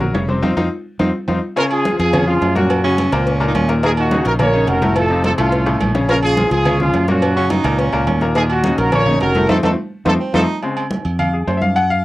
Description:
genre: latin, salsa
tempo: 212 BPM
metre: 4/4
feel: straight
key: unclear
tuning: A4 = 440 Hz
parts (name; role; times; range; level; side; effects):
- bright grand piano; accompaniment; 0.0-12.0 s; A2 to Gb5; -20 LUFS; left 3 dB; cassette tape
- fretless electric bass; bass; 0.0-12.0 s; F1 to Gb2; -19 LUFS; equal; none
- bongos and cowbell; percussion; 0.0-10.4 s; none; -26 LUFS; left 2 dB; none
- congas; percussion; 0.0-12.0 s; none; -23 LUFS; equal; none
- timbales and agogo bells; percussion; 0.1-11.9 s; none; -26 LUFS; right 6 dB; none
- mellow horn section; melody; 1.6-10.4 s; Db4 to Db5; -17 LUFS; right 1 dB; cassette tape
- warm baritone saxophone; second line; 2.8-3.7, 7.4-10.6 s; C4 to Eb4; -22 LUFS; right 4 dB; cassette tape
room: light reverb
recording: home recording on cassette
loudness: -14 LUFS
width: side -17 dB against mid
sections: 0.0-1.6 A section; 1.6-10.6 B section; 10.6-12.0 C section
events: band accent 0.4-1.6, 9.5-10.6; drum fill 0.9-1.6, 5.7-6.1, 9.8-10.6; grand piano solo 10.6-12.0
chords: 0.4 F5; 1.6 Bbm7; 2.7 Gb; 3.8 Ebm7; 5.0 F7; 6.1 Bbm7; 7.2 Gb; 8.4 Ebm7; 9.5 F7; 10.6 Fm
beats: 0.15 | 0.43 0.72 1.00 1.28 | 1.57 1.85 2.13 2.42 | 2.70 2.98 3.26 3.55 | 3.83 4.11 4.39 4.68 | 4.96 5.24 5.53 5.81 | 6.09 6.37 6.66 6.94 | 7.22 7.50 7.79 8.07 | 8.35 8.64 8.92 9.20 | 9.49 9.77 10.05 10.34 | 10.62 10.90 11.19 11.47 | 11.76 12.04

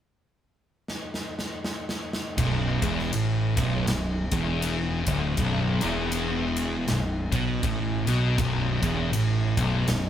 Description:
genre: stoner and doom metal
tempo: 80 BPM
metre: 4/4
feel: swing 59% on 8ths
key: B minor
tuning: A4 = 439 Hz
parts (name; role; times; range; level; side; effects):
- big rock drum kit; drums; 0.9-10.1 s; kick drum, ride cymbal, snare drum; -31 LUFS; equal; none
- thick fuzz guitar; riff; 2.4-10.1 s; B1 to B2; -28 LUFS; left 5 dB; distortion
- thick fuzz guitar; riff; 2.4-10.1 s; B1 to B2; -28 LUFS; right 5 dB; distortion
- fuzz fingered electric bass; bass; 2.4-10.1 s; B0 to B1; -31 LUFS; equal; overdrive
room: light reverb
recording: band playing live in one room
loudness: -24 LUFS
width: side -10 dB against mid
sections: 0.0-2.4 A section; 2.4-10.1 B section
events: drum fill 0.9-2.4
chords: none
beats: 0.13 0.88 1.63 | 2.38 3.13 3.88 4.63 | 5.38 6.13 6.88 7.63 | 8.38 9.13 9.88

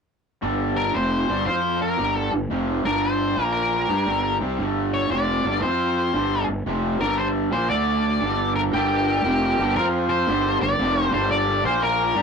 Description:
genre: rock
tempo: 116 BPM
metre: 4/4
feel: swing 66% on 8ths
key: G minor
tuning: A4 = 440 Hz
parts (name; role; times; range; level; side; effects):
- raw garage guitar; riff; 0.4-12.2 s; F2 to G4; -23 LUFS; right 1 dB; overdrive
- fuzz fingered electric bass; bass; 0.4-12.2 s; F1 to G2; -27 LUFS; right 1 dB; overdrive
- octave-fuzz lead guitar; melody; 0.8-12.2 s; G4 to D5; -23 LUFS; left 2 dB; distortion
- overdriven tonewheel organ; sustained chords; 8.7-12.2 s; Bb3 to C5; -31 LUFS; right 1 dB; chorus vibrato, slow rotary speaker
room: wet booth ambience, RT60 0.2 s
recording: rough rehearsal-room recording, warm saturation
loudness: -20 LUFS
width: side -6 dB against mid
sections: 0.4-8.7 A section; 8.7-12.2 B section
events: none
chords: 0.4 G5; 1.5 F5; 2.0 G5; 3.3 Bb5; 3.8 Gm; 5.6 F5; 6.1 Gm; 7.7 D5; 8.2 G5; 8.7 Gm; 9.8 F5; 10.3 Gm; 11.6 Bb5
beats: | 0.42 0.94 1.47 1.99 | 2.51 3.03 3.55 4.07 | 4.59 5.11 5.62 6.14 | 6.66 7.18 7.70 8.21 | 8.73 9.24 9.76 10.27 | 10.79 11.30 11.82

